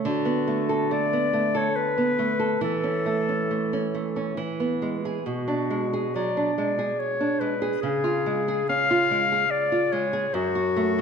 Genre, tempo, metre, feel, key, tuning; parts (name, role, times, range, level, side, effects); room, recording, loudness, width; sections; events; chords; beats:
romantic duo for clarinet and classical guitar; 70 BPM; 3/4; uneven beats, rubato; A major; A4 = 439 Hz
nylon-string guitar; accompaniment; 0.0-11.0 s; F#2 to A4; -25 LUFS; right 3 dB
bright clarinet; melody; 0.1-11.0 s; F#4 to E#5; -25 LUFS; left 4 dB
wet recital hall reverb, RT60 1.5 s; -22 LUFS; side -6 dB against mid
0.0-11.0 A section
0.1 Bm7/D; 2.6 A/E; 4.4 E; 5.3 G#m7b5/B; 7.8 C#; 10.3 F#m
| 0.07 0.93 1.77 | 2.63 3.51 4.38 | 5.26 6.16 7.00 | 7.83 8.70 9.52 | 10.34